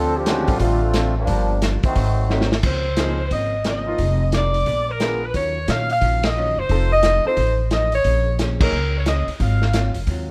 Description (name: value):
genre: jazz, big band swing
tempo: 177 BPM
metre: 4/4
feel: swing 64% on 8ths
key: Db major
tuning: A4 = 440 Hz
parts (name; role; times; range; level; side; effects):
- clear trombone section; second line; 0.0-2.5 s; Eb3 to A4; -25 LUFS; equal; none
- archtop guitar, miked and amplified; accompaniment; 0.0-10.3 s; G2 to C5; -34 LUFS; equal; none
- upright bass; bass; 0.0-10.3 s; F1 to Bb2; -24 LUFS; equal; none
- clear concert grand piano; accompaniment; 0.3-8.7 s; D3 to Db5; -30 LUFS; equal; none
- vintage drum kit; drums; 0.3-10.2 s; crash cymbal, hi-hat, kick drum, ride cymbal, snare drum; -26 LUFS; equal; none
- bright saxophone section; melody; 2.7-9.9 s; Bb4 to F5; -24 LUFS; equal; none
room: light reverb, studio reverb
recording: rough home demo mix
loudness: -20 LUFS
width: mono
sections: 0.0-2.6 A section; 2.6-10.3 B section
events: trombone section solo 0.0-2.6; drum fill 2.3-2.6; band accent 6.2, 8.6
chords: 0.0 Dm7; 1.3 Gm7; 2.0 Ab7b9; 2.6 Dbmaj13; 4.0 Fm7; 4.7 Bb7b9; 5.3 Ebm9; 6.7 F7; 8.1 Bbm9; 9.4 Ab13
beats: 0.27 0.61 0.95 | 1.29 1.62 1.96 2.30 | 2.64 2.98 3.32 3.65 | 3.99 4.33 4.67 5.01 | 5.35 5.68 6.02 6.36 | 6.70 7.04 7.38 7.71 | 8.05 8.39 8.73 9.07 | 9.40 9.74 10.08